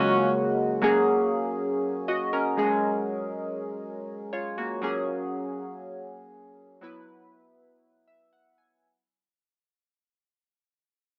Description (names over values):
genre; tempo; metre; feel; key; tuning
pop; 120 BPM; 4/4; straight; F# major; A4 = 440 Hz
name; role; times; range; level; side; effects
chorused retro synth keys; accompaniment; 0.0-8.8 s; C#3 to G#5; -28 LUFS; equal; cassette tape
room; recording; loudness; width
wet booth ambience, RT60 0.2 s; home recording on cassette, small speaker sound; -27 LUFS; mono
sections
0.8-8.8 A section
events
fade-out 0.8-8.8; synth keys fill 7.8-8.8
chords
0.0 F#add9; 2.6 C#sus4; 4.8 F#add9; 6.8 Esus2